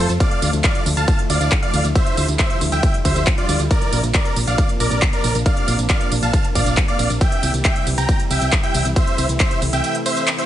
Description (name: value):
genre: uplifting trance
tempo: 137 BPM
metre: 4/4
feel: straight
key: unclear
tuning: A4 = 440 Hz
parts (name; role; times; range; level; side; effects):
- big supersaw lead; melody; 0.0-10.5 s; F4 to Bb5; -22 LUFS; right 1 dB; sidechain pumping, tape echo
- solid FM bass; bass; 0.0-9.8 s; Bb1 to F2; -20 LUFS; equal; sidechain pumping
- big-room dance drum kit; drums; 0.1-10.5 s; handclaps, hi-hat, ride cymbal, tambourine; -24 LUFS; right 1 dB; sidechain pumping on hats, sidechain pumping on cymbals, sidechain pumping on perc
- electronic kick drum; drums; 0.2-9.5 s; none; -18 LUFS; equal; none
room: digital ambience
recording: nothing above 10.9 kHz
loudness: -16 LUFS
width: side -12 dB against mid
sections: 0.0-10.5 A section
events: band accent 10.3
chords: 0.2 Dmadd9; 3.7 Bbadd9; 7.2 C